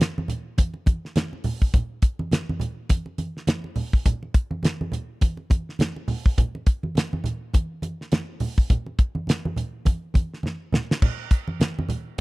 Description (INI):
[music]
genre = soul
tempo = 103 BPM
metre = 4/4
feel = swing 58% on 16ths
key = none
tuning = none
[part]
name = damped 70s drum kit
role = drums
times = 0.0-12.2 s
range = crash cymbal, hi-hat, kick drum, snare drum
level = -20 LUFS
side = equal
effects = none
[part]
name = congas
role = percussion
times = 0.0-12.0 s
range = none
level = -29 LUFS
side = right 2 dB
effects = none
[sound]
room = small room ambience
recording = dry, close 1970s-style studio recording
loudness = -22 LUFS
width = side -22 dB against mid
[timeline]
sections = 0.0-11.0 A section; 11.0-12.2 A section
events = drum fill 10.4-11.0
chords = none